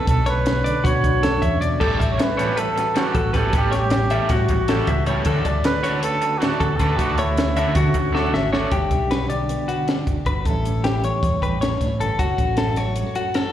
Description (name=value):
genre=math rock and midwest emo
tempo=312 BPM (eighths)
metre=9/8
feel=straight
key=G lydian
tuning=A4 = 443 Hz
part: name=breathy trumpet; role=melody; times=0.0-8.5 s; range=E4 to C#5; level=-25 LUFS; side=right 3 dB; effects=slapback echo, digital delay
part: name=mellow electric guitar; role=accompaniment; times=0.0-13.5 s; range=D2 to F#4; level=-28 LUFS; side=right 4 dB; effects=tremolo, slapback echo
part: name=clean electric guitar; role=arpeggios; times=0.0-13.5 s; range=F#4 to E5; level=-24 LUFS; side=left 4 dB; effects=slapback echo, digital delay
part: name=hollow-body short-scale fingered electric bass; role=bass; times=0.0-13.0 s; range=F#1 to D3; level=-23 LUFS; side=equal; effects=none
part: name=compact cocktail drum kit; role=drums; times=0.1-13.4 s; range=crash cymbal, hi-hat, kick drum, snare drum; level=-24 LUFS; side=equal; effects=none
part: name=raw garage guitar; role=riff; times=1.8-8.7 s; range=G3 to A4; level=-26 LUFS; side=right 2 dB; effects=overdrive, slapback echo
room=light reverb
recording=live gig heard through the venue's PA, recital hall reverb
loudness=-18 LUFS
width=side -11 dB against mid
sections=0.0-8.7 A section; 8.7-13.5 B section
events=drum fill 8.1-8.7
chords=0.0 Bm9; 1.8 A13; 5.3 Dmaj7; 8.7 Gmaj7; 10.5 A7; 12.2 F#m7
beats=| 0.07 0.26 0.46 0.65 0.84 1.03 1.23 1.42 1.61 | 1.80 1.99 2.19 2.38 2.57 2.76 2.95 3.15 3.34 | 3.53 3.72 3.91 4.11 4.30 4.49 4.68 4.88 5.07 | 5.26 5.45 5.64 5.83 6.03 6.22 6.41 6.60 6.79 | 6.99 7.18 7.37 7.56 7.76 7.95 8.14 8.33 8.53 | 8.72 8.91 9.10 9.29 9.49 9.68 9.87 10.06 10.26 | 10.45 10.64 10.84 11.03 11.22 11.41 11.61 11.80 11.99 | 12.19 12.38 12.57 12.76 12.96 13.15 13.34